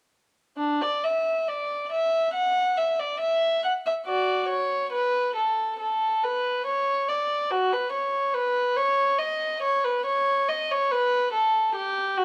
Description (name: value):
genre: classical, baroque-style suite movement for unaccompanied violin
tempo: 70 BPM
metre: 4/4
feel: rubato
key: D major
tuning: A4 = 440 Hz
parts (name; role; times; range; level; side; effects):
- dark violin; solo; 0.6-12.2 s; D4 to F#5; -25 LUFS; equal; none
room: light reverb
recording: close, detailed microphones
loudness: -25 LUFS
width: mono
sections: 0.6-12.2 A section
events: none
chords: none